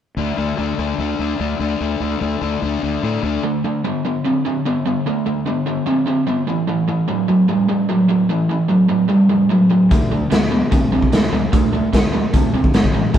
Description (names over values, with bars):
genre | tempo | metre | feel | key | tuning
classic rock | 148 BPM | 4/4 | straight | unclear | A4 = 441 Hz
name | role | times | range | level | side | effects
overdriven semi-hollow guitar | riff | 0.2-13.2 s | A2 to D4 | -21 LUFS | left 6 dB | spring reverb
fuzz fingered electric bass | bass | 0.2-3.4, 9.9-13.2 s | G#1 to A2 | -23 LUFS | equal | overdrive
overdriven electric guitar | riff | 3.4-13.2 s | A2 to C4 | -17 LUFS | right 4 dB | spring reverb
raw garage drum kit | drums | 9.9-13.2 s | hi-hat, kick drum, snare drum | -16 LUFS | equal | none
room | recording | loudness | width
moderate stone room reverb, RT60 1.1 s | band playing live in one room | -15 LUFS | side -10 dB against mid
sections
0.2-3.4 A section; 3.4-13.2 B section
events
none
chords
0.2 D5; 6.5 A5; 9.9 D5